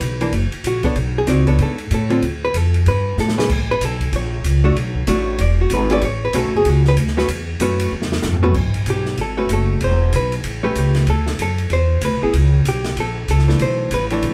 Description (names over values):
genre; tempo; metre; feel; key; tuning
jazz, small-group swing and bop; 190 BPM; 4/4; swing 62% on 8ths; A major; A4 = 440 Hz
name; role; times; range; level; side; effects
hollow-body jazz guitar; accompaniment; 0.0-14.3 s; D3 to D5; -22 LUFS; equal; none
upright bass; bass; 0.0-14.3 s; E1 to A2; -20 LUFS; equal; none
open jazz drum kit; drums; 0.0-14.3 s; crash cymbal, hi-hat, kick drum, ride cymbal, snare drum, toms; -28 LUFS; equal; none
room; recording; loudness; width
moderate studio reverb, RT60 0.5 s; band playing live in one room; -18 LUFS; mono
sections
0.0-8.6 A section; 8.6-14.3 A section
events
drum fill 3.2-3.5, 7.9-8.6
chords
0.3 F#; 1.0 Bm9; 2.2 Dm; 2.9 Gadd9; 3.5 Asus2; 4.1 F#; 4.8 Bm7; 5.4 E69; 6.0 A69; 7.9 E5; 8.6 A69; 9.8 E5; 10.4 A9; 11.1 D6; 12.3 Bsus2; 13.0 Bbmmaj7; 13.6 Bm7